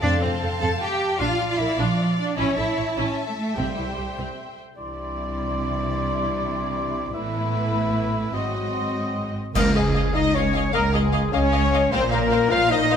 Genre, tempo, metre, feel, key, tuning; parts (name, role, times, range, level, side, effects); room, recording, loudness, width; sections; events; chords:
cinematic, heroic adventure film score; 102 BPM (dotted quarters); 6/8; straight; C major from 4.8 s, Db major from 9.6 s; A4 = 440 Hz
warm symphonic violin section; melody; 0.0-13.0 s; F4 to A5; -31 LUFS; left 4 dB
warm symphonic violin section; second line; 0.0-13.0 s; E4 to A5; -32 LUFS; left 3 dB
rich symphonic viola section; accompaniment; 0.0-13.0 s; G3 to Eb5; -31 LUFS; equal
dark symphonic double bass section; bass; 0.0-13.0 s; Ab1 to F2; -28 LUFS; right 3 dB
warm studio cello section; bass; 0.0-13.0 s; Db2 to A4; -27 LUFS; right 2 dB
timpani; percussion; 0.0-0.6, 3.6-4.1, 9.6-10.1 s; F2 to Db3; -31 LUFS; left 1 dB
mellow clarinet; second line; 4.8-13.0 s; E4 to F5; -31 LUFS; left 2 dB
mellow cor anglais; second line; 4.8-9.4 s; D5 to E5; -31 LUFS; right 2 dB
mellow hollow small flute group; second line; 4.8-13.0 s; Ab4 to C6; -31 LUFS; left 1 dB
warm French horn section; sustained chords; 4.8-13.0 s; E3 to F4; -27 LUFS; left 5 dB
dark trumpet section; stabs; 9.6-13.0 s; Ab4 to F5; -28 LUFS; right 1 dB
clash cymbals and concert bass drum; percussion; 9.6-10.3 s; -29 LUFS; left 1 dB
moderate concert hall reverb, RT60 1.9 s; -20 LUFS; side -8 dB against mid
0.0-4.8 A section; 4.8-9.6 B section; 9.6-13.0 C section
band accent 9.6-10.0
0.0 F; 1.2 Bb; 2.4 A; 3.6 C; 4.8 Cadd9; 7.1 Asus2; 8.3 Ab7; 9.6 Dbadd9; 11.9 Bbsus2